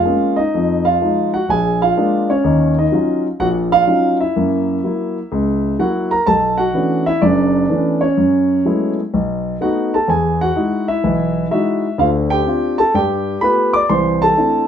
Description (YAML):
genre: solo jazz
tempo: 126 BPM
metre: 4/4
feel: swing 67% on 8ths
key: B minor from 6.3 s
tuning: A4 = 441 Hz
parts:
  - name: warm concert grand piano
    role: solo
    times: 0.0-14.7 s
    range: F#1 to D6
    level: -14 LUFS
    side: equal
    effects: none
room: moderate studio reverb, RT60 0.8 s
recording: none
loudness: -14 LUFS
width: side -8 dB against mid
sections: 0.0-6.3 A section; 6.3-14.7 B section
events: none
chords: 0.0 Bbm7; 0.5 Fm7; 1.5 Bb7; 2.4 Ebm9; 4.4 Gb7; 6.3 Bm11; 8.2 F#m11; 9.1 B7; 10.1 Emaj9; 12.0 Dm7; 12.9 G9; 13.9 C69